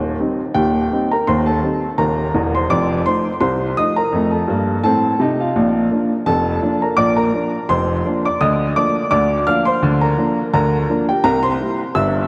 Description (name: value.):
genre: ragtime piano.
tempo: 84 BPM.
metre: 2/4.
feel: swing 54% on 16ths.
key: Bb major.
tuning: A4 = 437 Hz.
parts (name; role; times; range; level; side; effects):
warm upright piano; solo; 0.0-12.3 s; Eb1 to F6; -18 LUFS; equal; diffuse ambient delay.
room: wet lush hall reverb, RT60 2.6 s.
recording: dreamy mix soaked in reverb.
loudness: -17 LUFS.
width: mono.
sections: 0.0-12.3 A section.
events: none.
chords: 0.0 Cm/Eb; 2.7 F7; 5.5 Bb; 8.4 Bb/D; 11.2 C7.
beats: 0.55 | 1.27 1.98 | 2.70 3.41 | 4.12 4.84 | 5.55 6.26 | 6.97 7.69 | 8.40 9.11 | 9.82 10.53 | 11.24 11.96.